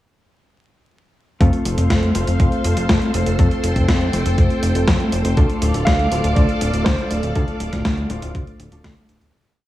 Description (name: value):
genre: italo disco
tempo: 121 BPM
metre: 4/4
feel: straight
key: D minor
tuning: A4 = 440 Hz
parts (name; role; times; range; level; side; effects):
- string machine, full ensemble; sustained chords; 1.4-9.3 s; A4 to D6; -26 LUFS; right 1 dB; ensemble chorus
- mellow electric guitar; stabs; 1.4-9.3 s; A3 to C5; -24 LUFS; left 2 dB; spring reverb, digital delay
- fat analog bass; bass; 1.4-9.3 s; D1 to F2; -20 LUFS; equal; none
- clean 12-bit digital drum machine; drums; 1.4-9.3 s; hi-hat, snare drum; -23 LUFS; equal; small room ambience, gated reverb
- electronic kick drum; drums; 1.4-8.9 s; none; -18 LUFS; equal; small room ambience
- dark concert grand piano; melody; 5.9-7.6 s; C5 to F5; -25 LUFS; right 2 dB; digital delay
room: light reverb, digital ambience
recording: vinyl crackle, small room ambience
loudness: -16 LUFS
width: side -15 dB against mid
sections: 1.4-9.3 verse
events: fade-out 6.7-9.3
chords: 1.4 F; 5.4 Dm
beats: | 1.41 1.90 2.40 2.89 | 3.39 3.88 4.38 4.88 | 5.37 5.87 6.37 6.86 | 7.36 7.85 8.35 8.84